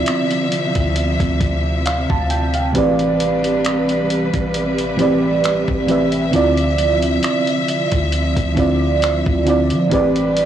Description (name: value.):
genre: contemporary R&B.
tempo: 67 BPM.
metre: 4/4.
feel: swing 54% on 16ths.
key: unclear.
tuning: A4 = 442 Hz.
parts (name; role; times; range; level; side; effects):
mellow FM electric piano; accompaniment; 0.0-10.5 s; A2 to A5; -17 LUFS; right 2 dB; chorus.
warm studio string section; sustained chords; 0.0-10.5 s; C3 to E5; -23 LUFS; left 2 dB; none.
warm 808-style bass; bass; 0.0-10.5 s; A1 to F3; -23 LUFS; equal; none.
dusty soul sampler-style drum kit; drums; 0.1-10.5 s; finger snaps, hi-hat, kick drum; -23 LUFS; equal; soft clipping on snare.
room: light reverb, digital ambience.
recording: blown-out, overdriven recording, overdrive.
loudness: -15 LUFS.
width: side -10 dB against mid.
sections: 0.0-10.5 A section.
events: none.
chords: 0.0 Dm9; 2.8 Am11; 6.3 Dm9; 9.9 Am11.